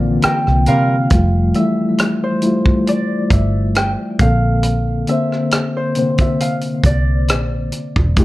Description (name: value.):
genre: R&B, neo-soul.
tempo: 68 BPM.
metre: 4/4.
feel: swing 53% on 16ths.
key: unclear.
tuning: A4 = 441 Hz.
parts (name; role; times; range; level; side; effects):
Celtic harp; melody; 0.0-8.2 s; C5 to G5; -23 LUFS; right 1 dB; plate reverb, tape echo.
mellow reed electric piano; accompaniment; 0.0-8.2 s; C3 to C5; -18 LUFS; left 2 dB; tremolo.
vintage muted fingered electric bass; bass; 0.0-8.2 s; E1 to C3; -16 LUFS; equal; none.
warm horn section; stabs; 0.2-1.0 s; G3 to Bb4; -26 LUFS; right 5 dB; plate reverb.
tight funk drum kit; drums; 0.2-8.2 s; hi-hat, kick drum, rim click; -17 LUFS; equal; none.
room: moderate studio reverb, RT60 0.8 s.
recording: dark, warm production.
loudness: -14 LUFS.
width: side -17 dB against mid.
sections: 0.0-1.1 A section; 1.1-8.2 B section.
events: band accent 0.0-1.1; harp solo 0.0-1.1.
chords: 0.0 C9sus4; 1.1 Fmaj9; 4.2 Bbmaj9.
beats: 0.23 | 1.11 1.99 2.87 3.75 | 4.64 5.52 6.40 7.28 | 8.17.